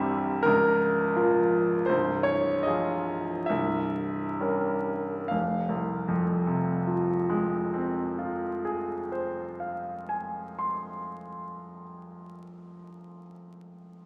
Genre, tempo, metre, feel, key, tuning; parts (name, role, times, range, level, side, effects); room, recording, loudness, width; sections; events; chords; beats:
classical, romantic nocturne for solo piano; 31-45 BPM; 4/4; rubato; F minor; A4 = 440 Hz
bright concert grand piano; solo; 0.0-14.0 s; C1 to C6; -29 LUFS; equal
wet recital hall reverb, RT60 1.4 s; vinyl crackle; -28 LUFS; mono
0.0-5.3 A section; 5.3-11.9 B section
slowing down 0.0-5.3
0.5 Bbm/Db; 1.9 Fm/C; 3.5 C7b9; 5.3 Fm
0.45 1.88 3.49 | 5.32 6.98 8.63 10.26